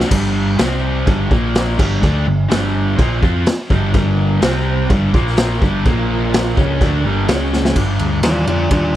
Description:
blues rock power trio and southern rock; 126 BPM; 4/4; straight; G minor; A4 = 437 Hz
overdriven electric guitar; riff; 0.0-9.0 s; G2 to F4; -18 LUFS; equal
picked electric bass; bass; 0.0-8.9 s; G1 to F2; -19 LUFS; equal
raw garage drum kit; drums; 0.0-8.8 s; crash cymbal, kick drum, ride cymbal, snare drum; -18 LUFS; equal
tonewheel organ; sustained chords; 3.9-7.8 s; F3 to C#5; -26 LUFS; right 5 dB; slow rotary speaker
overdriven slide guitar; melody; 8.2-9.0 s; F4 to D5; -19 LUFS; left 1 dB
little or no reverb; -13 LUFS; side -13 dB against mid
0.1-7.8 A section; 7.8-9.0 B section
drum fill 7.5; electric slide guitar solo 7.8-9.0
0.1 G5; 0.6 C5; 1.1 G5; 1.3 Bb5; 1.8 Gm; 4.4 C5; 4.9 G5; 5.1 Bb5; 5.6 G5; 5.9 Bb5; 6.6 Gm; 7.3 C#5; 7.8 G5

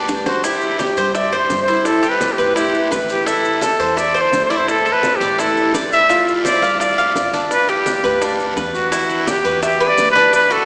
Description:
latin, Cuban son and guajira; 170 BPM; 4/4; straight; G major; A4 = 440 Hz
breathy trumpet; melody; 0.0-10.7 s; F#4 to E5; -19 LUFS; equal
Cuban tres; arpeggios; 0.0-10.7 s; D4 to F5; -21 LUFS; equal
upright bass; bass; 0.0-10.7 s; F1 to G2; -36 LUFS; equal
bongos; percussion; 0.1-10.5 s; -30 LUFS; equal
congas; percussion; 0.1-10.7 s; -36 LUFS; equal
guiro; percussion; 0.1-10.7 s; -34 LUFS; equal
maracas; percussion; 0.1-10.7 s; -35 LUFS; equal
wet cathedral reverb, RT60 6.3 s; recorded in a church or concert hall, small speaker sound; -16 LUFS; mono
0.4-10.7 A section
drum fill 0.0-0.4
0.4 C; 1.9 G6; 3.3 Am; 4.7 Dsus2; 6.1 Fsus2; 7.5 G; 8.9 Em

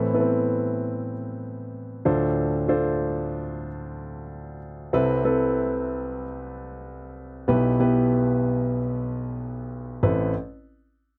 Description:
pop; free time; A minor; A4 = 440 Hz
warm grand piano; accompaniment; 0.0-10.3 s; A1 to C5; -26 LUFS; equal
light reverb; dry, close 1970s-style studio recording; -25 LUFS; mono
0.0-10.0 A section; 10.0-11.2 B section
0.0 Amadd9; 2.1 Dm7; 4.9 Amadd9/C; 7.5 Em/B; 10.0 Amadd9

